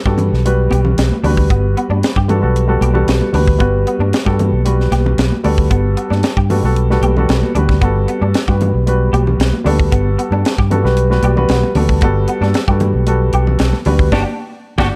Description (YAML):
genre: electric jazz fusion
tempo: 114 BPM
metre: 4/4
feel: straight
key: G major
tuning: A4 = 441 Hz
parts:
  - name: warm baby grand piano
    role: accompaniment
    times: 0.1-14.9 s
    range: G3 to A5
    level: -21 LUFS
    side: equal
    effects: none
  - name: semi-hollow electric guitar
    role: stabs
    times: 0.1-14.9 s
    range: B3 to G4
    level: -26 LUFS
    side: equal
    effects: ensemble chorus
  - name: fingered electric bass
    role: bass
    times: 0.1-14.9 s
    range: G1 to G2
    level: -17 LUFS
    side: equal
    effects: none
  - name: crisp fusion drum kit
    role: drums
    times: 0.1-14.9 s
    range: hi-hat, kick drum, snare drum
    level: -20 LUFS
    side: equal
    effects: none
  - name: congas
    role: percussion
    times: 0.2-14.9 s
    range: none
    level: -25 LUFS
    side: equal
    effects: none
room: small room ambience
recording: dark, warm production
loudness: -14 LUFS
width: mono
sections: 0.0-15.0 A section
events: grand piano fill 11.0-12.0; band accent 14.1-15.0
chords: 0.0 Gmaj9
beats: 0.45 0.98 | 1.50 2.03 2.56 3.08 | 3.61 4.13 4.66 5.19 | 5.71 6.24 6.76 7.29 | 7.82 8.34 8.87 9.39 | 9.92 10.45 10.97 11.50 | 12.02 12.55 13.08 13.60 | 14.13 14.65